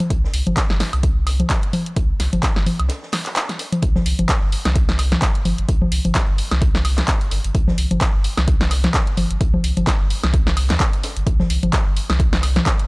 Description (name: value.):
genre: acid house.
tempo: 129 BPM.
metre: 4/4.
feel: swing 56% on 16ths.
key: unclear.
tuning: A4 = 440 Hz.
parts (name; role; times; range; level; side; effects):
open jazz drum kit; drums; 0.0-12.8 s; hi-hat, snare drum; -37 LUFS; right 1 dB; none.
punchy analog drum machine; drums; 0.0-12.9 s; congas, handclaps, hi-hat, snare drum, woodblock; -21 LUFS; equal; none.
warm sub bass; bass; 0.1-12.6 s; G1 to Eb2; -20 LUFS; equal; sidechain pumping.
electronic kick drum; drums; 0.1-12.8 s; none; -19 LUFS; equal; none.
room: little or no reverb.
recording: dry, gritty hardware recording.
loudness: -16 LUFS.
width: side -28 dB against mid.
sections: 0.0-3.8 A section; 3.8-12.9 B section.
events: break 2.9-3.8; drop 3.8-12.9.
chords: none.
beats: | 0.10 0.57 1.03 1.50 | 1.97 2.43 2.90 3.36 | 3.83 4.29 4.75 5.22 | 5.68 6.15 6.62 7.08 | 7.55 8.01 8.48 8.94 | 9.41 9.87 10.34 10.80 | 11.27 11.73 12.20 12.66.